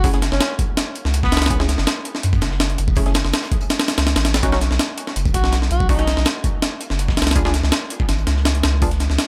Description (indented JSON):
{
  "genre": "drum and bass, jungle",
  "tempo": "164 BPM",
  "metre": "4/4",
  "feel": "straight",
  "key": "F# dorian",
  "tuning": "A4 = 440 Hz",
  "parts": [
    { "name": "clear alto saxophone", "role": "melody", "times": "0.0-1.6, 5.3-6.3 s", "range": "B3 to F#4", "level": "-30 LUFS", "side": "equal", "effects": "vintage 12-bit sampler grit, dub echo" },
    { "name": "filtered dub chord stab", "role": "stabs", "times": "0.0-8.9 s", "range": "A3 to G#4", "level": "-31 LUFS", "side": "equal", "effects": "subtle chorus, cassette tape, dub echo" },
    { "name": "soft dub sub bass", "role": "bass", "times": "0.0-9.2 s", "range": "F#1 to F#2", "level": "-22 LUFS", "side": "equal", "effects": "none" },
    { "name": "crunchy breakbeat drum kit", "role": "drums", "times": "0.0-9.3 s", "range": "hi-hat, snare drum", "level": "-37 LUFS", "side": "equal", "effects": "none" },
    { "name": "jungle sampler-style drum kit", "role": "drums", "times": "0.0-9.3 s", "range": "hi-hat, kick drum, snare drum", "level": "-21 LUFS", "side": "equal", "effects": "none" }
  ],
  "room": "small room ambience",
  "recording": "none",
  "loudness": "-19 LUFS",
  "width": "mono",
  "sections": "0.0-9.3 A section",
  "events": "none",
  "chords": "0.0 F#m; 4.4 B5; 7.4 C#5",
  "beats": "| 0.04 0.41 0.77 1.14 | 1.50 1.87 2.23 2.60 | 2.97 3.33 3.70 4.06 | 4.43 4.80 5.16 5.53 | 5.89 6.26 6.62 6.99 | 7.36 7.72 8.09 8.46 | 8.82 9.19"
}